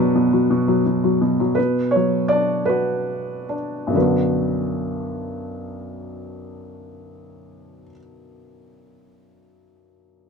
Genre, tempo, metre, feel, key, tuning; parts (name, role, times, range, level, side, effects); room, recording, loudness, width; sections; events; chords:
classical, lyrical solo piano; 42-60 BPM (dotted quarters); 6/8; rubato; B minor; A4 = 441 Hz
felt-muted upright piano; solo; 0.0-10.3 s; B1 to D5; -19 LUFS; equal
light reverb; dark, warm production; -18 LUFS; side -5 dB against mid
0.0-1.6 A section; 1.6-4.0 B section; 4.0-9.3 C section
slowing down 0.0-4.0
0.0 Bm